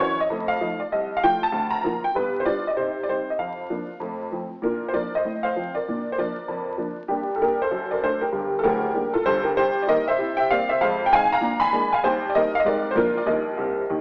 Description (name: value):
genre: jazz, stride piano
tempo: 194 BPM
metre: 4/4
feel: swing 59% on 8ths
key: Bb major, Eb major from 9.6 s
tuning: A4 = 443 Hz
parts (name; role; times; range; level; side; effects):
- honky-tonk upright piano; solo; 0.0-14.0 s; D1 to Cb6; -24 LUFS; equal; none
room: wet large studio reverb, RT60 1.2 s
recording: band playing live in one room, vinyl crackle, AM radio sound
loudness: -24 LUFS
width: mono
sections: 0.0-4.6 A section; 4.6-14.0 A section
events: honky-tonk piano fill 13.6-14.0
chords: 0.3 F7; 0.9 F/C; 1.5 Bb/D; 2.1 G7; 2.8 Cm; 3.4 Bb/F; 4.0 F; 4.6 Bb; 5.2 F/A; 5.9 Bb; 7.1 Gm; 7.7 D/F#; 8.3 Gm; 9.6 Eb/G; 10.2 C7; 10.8 Fm7; 11.4 Bb7b9; 12.0 Eb; 12.7 Abmaj7; 13.0 Bb; 13.3 Eb